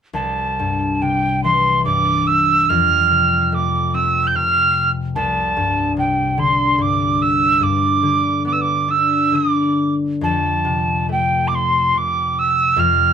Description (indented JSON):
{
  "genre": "celtic folk, Celtic slow air",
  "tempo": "71 BPM",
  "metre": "3/4",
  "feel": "uneven beats, rubato",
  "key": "C major",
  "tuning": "A4 = 437 Hz",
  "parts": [
    { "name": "breathy mellow mid whistle", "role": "melody", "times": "0.1-13.1 s", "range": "G5 to G6", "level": "-16 LUFS", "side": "right 3 dB", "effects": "none" },
    { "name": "concert harp", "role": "accompaniment", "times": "0.1-13.1 s", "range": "C2 to D4", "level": "-20 LUFS", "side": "left 3 dB", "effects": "none" }
  ],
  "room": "moderate studio reverb, RT60 0.6 s",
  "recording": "band playing live in one room",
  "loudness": "-15 LUFS",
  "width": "side -8 dB against mid",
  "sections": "0.1-13.1 A section",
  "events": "none",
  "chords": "0.1 C6; 2.7 F; 5.2 Csus2; 7.6 G; 10.2 F"
}